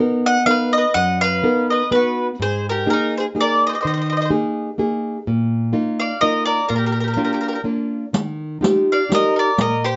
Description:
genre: italian folk, Italian serenade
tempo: 125 BPM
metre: 3/4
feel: swing 54% on 8ths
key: Eb major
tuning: A4 = 435 Hz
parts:
  - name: nylon-string guitar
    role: accompaniment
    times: 0.0-10.0 s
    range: F#2 to B4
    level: -22 LUFS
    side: equal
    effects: none
  - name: bowl-back mandolin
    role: melody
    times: 0.3-10.0 s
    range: Bb4 to F#5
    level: -22 LUFS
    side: equal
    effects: plate reverb
  - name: bowl-back mandolin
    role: second line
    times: 0.3-10.0 s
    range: Eb4 to D#5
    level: -27 LUFS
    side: equal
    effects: none
  - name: riq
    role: percussion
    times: 8.1-9.8 s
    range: none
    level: -23 LUFS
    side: equal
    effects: none
room: moderate small room reverb, RT60 0.5 s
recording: nothing above 7.7 kHz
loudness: -19 LUFS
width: mono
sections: 0.0-10.0 A section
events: none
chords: 0.0 Bmaj7; 2.4 Absus2; 5.3 Bbsus4; 6.7 Bb; 8.2 Ebadd9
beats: 0.47 | 0.94 1.42 1.91 | 2.40 2.88 3.36 | 3.84 4.32 4.80 | 5.27 5.74 6.22 | 6.70 7.18 7.67 | 8.16 8.64 9.12 | 9.60

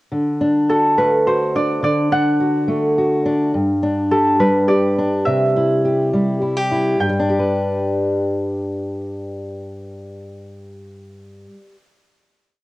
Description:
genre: folk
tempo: 104 BPM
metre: 3/4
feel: straight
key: G major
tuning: A4 = 443 Hz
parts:
  - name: fingerpicked steel-string acoustic guitar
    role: accompaniment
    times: 0.1-11.9 s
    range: G2 to B4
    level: -18 LUFS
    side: equal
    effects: cassette tape
  - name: Celtic harp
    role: melody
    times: 0.7-11.4 s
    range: A4 to G5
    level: -19 LUFS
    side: right 1 dB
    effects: cassette tape
room: light reverb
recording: home recording on cassette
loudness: -15 LUFS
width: side -19 dB against mid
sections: 0.1-7.0 verse; 7.0-10.5 final chord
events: none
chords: 0.1 D; 3.5 G5; 5.3 C; 7.0 G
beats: | 0.11 0.68 1.25 | 1.83 2.40 2.98 | 3.55 4.12 4.70 | 5.28 5.85 6.43 | 7.00 7.58 8.16 | 8.74 9.31 9.89

